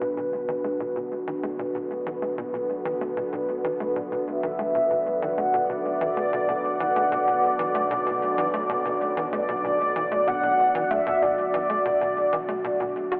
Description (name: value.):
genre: ambient, sequencer-driven space music.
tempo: 95 BPM.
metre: 4/4.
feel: straight.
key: B minor.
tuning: A4 = 440 Hz.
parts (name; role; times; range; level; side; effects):
sweeping resonant pad; sustained chords; 0.0-13.2 s; D3 to D5; -29 LUFS; equal; chorus.
tight sequencer bass; riff; 0.0-13.2 s; B2 to F#4; -36 LUFS; equal; lush chorus, cassette tape, tape echo.
analog drone; bass; 0.3-13.2 s; B1; -40 LUFS; equal; chorus.
mellow horn-like synth lead; melody; 4.3-13.2 s; D5 to F#5; -27 LUFS; equal; analog chorus, tape echo.
room: wet cathedral reverb, RT60 6.3 s.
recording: in a vast, echoing space, telephone sound.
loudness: -25 LUFS.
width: mono.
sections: 0.0-13.2 A section.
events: fade-in on synth drone 0.0-13.2.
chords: 0.0 Bm.